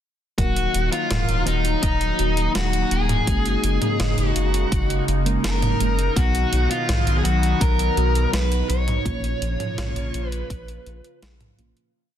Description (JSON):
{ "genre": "synthwave", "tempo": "83 BPM", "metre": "4/4", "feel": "straight", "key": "Eb minor", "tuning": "A4 = 439 Hz", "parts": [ { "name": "smooth overdriven lead guitar", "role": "melody", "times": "0.4-11.2 s", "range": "Eb4 to Db5", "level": "-25 LUFS", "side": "left 2 dB", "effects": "digital delay" }, { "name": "phased analog pad", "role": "sustained chords", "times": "0.7-11.9 s", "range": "Db3 to F4", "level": "-28 LUFS", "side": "equal", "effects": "phaser, chorus, sidechain pumping" }, { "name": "mellow FM electric piano", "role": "stabs", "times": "0.4-11.9 s", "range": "Bb2 to Bb4", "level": "-31 LUFS", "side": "right 2 dB", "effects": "chorus, phaser" }, { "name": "round analog bass", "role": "bass", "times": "0.4-11.7 s", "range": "Eb1 to B1", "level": "-23 LUFS", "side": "equal", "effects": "none" }, { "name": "clean 12-bit digital drum machine", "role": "drums", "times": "0.4-11.9 s", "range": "hi-hat, snare drum, toms", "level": "-27 LUFS", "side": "right 1 dB", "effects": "none" }, { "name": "electronic kick drum", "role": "drums", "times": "0.4-10.6 s", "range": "none", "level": "-24 LUFS", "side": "equal", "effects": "overdrive" } ], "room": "light reverb", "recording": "dense, heavily limited modern master", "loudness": "-19 LUFS", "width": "side -10 dB against mid", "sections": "0.4-11.9 verse", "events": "fade-out 8.1-11.9", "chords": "0.4 Ebm; 3.3 Gbadd9; 6.2 B; 9.1 Bbm", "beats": "| 0.38 1.11 1.83 2.55 | 3.27 4.00 4.72 5.44 | 6.17 6.89 7.61 8.34 | 9.06 9.78 10.50 11.23" }